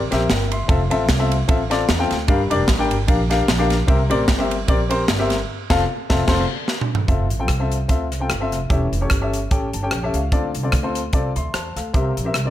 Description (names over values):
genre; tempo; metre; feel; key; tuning
uptempo gospel; 150 BPM; 4/4; swing 56% on 8ths; F major; A4 = 442 Hz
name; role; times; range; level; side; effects
upright bass; bass; 0.0-12.5 s; E1 to E2; -23 LUFS; right 1 dB; none
warm grand piano; accompaniment; 0.1-12.5 s; G2 to C6; -22 LUFS; left 2 dB; none
crisp fusion drum kit; drums; 0.1-12.5 s; crash cymbal, hi-hat, kick drum, ride cymbal, rim click, snare drum, toms; -21 LUFS; equal; none
room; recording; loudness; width
light reverb, small room ambience; none; -17 LUFS; side -12 dB against mid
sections
0.0-7.1 A section; 7.1-12.5 B section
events
band accent 5.5-7.1; drum fill 6.7-7.1; grand piano fill 9.5-10.3, 12.3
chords
0.0 C7; 0.7 Fmaj7; 2.3 Gm7; 3.9 C7; 5.5 F; 7.1 Fmaj7; 8.7 A7/E; 10.3 Dm7; 11.9 C7